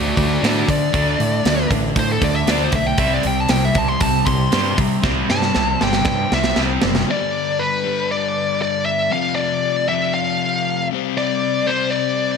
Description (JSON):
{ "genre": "hard rock", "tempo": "117 BPM", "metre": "4/4", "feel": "straight", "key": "unclear", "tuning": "A4 = 440 Hz", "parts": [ { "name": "high-gain lead guitar", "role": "melody", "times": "0.0-12.4 s", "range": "F#4 to C6", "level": "-20 LUFS", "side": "left 1 dB", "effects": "distortion" }, { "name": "crunchy overdriven guitar", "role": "riff", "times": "0.0-12.4 s", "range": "F2 to D4", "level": "-23 LUFS", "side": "left 12 dB", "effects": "spring reverb" }, { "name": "distorted electric guitar", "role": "riff", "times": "0.0-7.1 s", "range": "C3 to D4", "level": "-25 LUFS", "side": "right 13 dB", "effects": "distortion" }, { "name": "sludgy distorted guitar", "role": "riff", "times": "0.0-7.1 s", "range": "C3 to D4", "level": "-25 LUFS", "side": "equal", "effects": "overdrive" }, { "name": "growling picked electric bass", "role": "bass", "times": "0.0-7.0 s", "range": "F#1 to D3", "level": "-23 LUFS", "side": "right 1 dB", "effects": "overdrive" }, { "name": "tight metal drum kit", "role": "drums", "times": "0.2-7.1 s", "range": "hi-hat, kick drum, snare drum", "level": "-21 LUFS", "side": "right 1 dB", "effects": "none" } ], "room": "moderate plate reverb, RT60 1.6 s, studio ambience", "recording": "bright 1980s-style digital production", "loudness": "-16 LUFS", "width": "side -6 dB against mid", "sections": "0.0-7.1 A section; 7.1-12.4 B section", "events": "lead electric guitar solo 0.0-7.1; drum fill 5.0-7.1", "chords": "0.0 D; 3.0 C5; 7.1 G; 9.1 F5; 10.9 C5" }